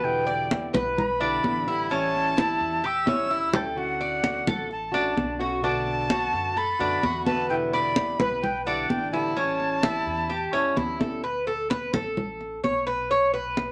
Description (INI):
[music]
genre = latin, Cuban son and guajira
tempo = 129 BPM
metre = 4/4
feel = straight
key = D major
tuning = A4 = 439 Hz
[part]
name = breathy bright jazz flute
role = melody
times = 0.0-11.0 s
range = F#5 to E6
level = -30 LUFS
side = equal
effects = none
[part]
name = flamenco guitar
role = accompaniment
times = 0.0-11.2 s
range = B2 to F#4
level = -34 LUFS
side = equal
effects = none
[part]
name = Cuban tres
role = arpeggios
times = 0.0-13.7 s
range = C#4 to D5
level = -29 LUFS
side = equal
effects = none
[part]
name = upright bass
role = bass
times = 0.0-13.7 s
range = A1 to F#2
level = -42 LUFS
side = equal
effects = none
[part]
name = congas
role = percussion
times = 0.1-13.7 s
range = none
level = -30 LUFS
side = equal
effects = none
[sound]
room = wet small room reverb, RT60 0.5 s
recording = none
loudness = -26 LUFS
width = mono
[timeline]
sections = 0.0-11.2 A section; 11.2-13.7 B section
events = drum fill 3.1-3.8; Cuban tres solo 11.2-13.7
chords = 0.0 Em7; 1.9 A7; 3.8 Dmaj7; 5.6 Bm7; 7.5 Em7; 9.4 A7; 11.2 D5; 13.1 B5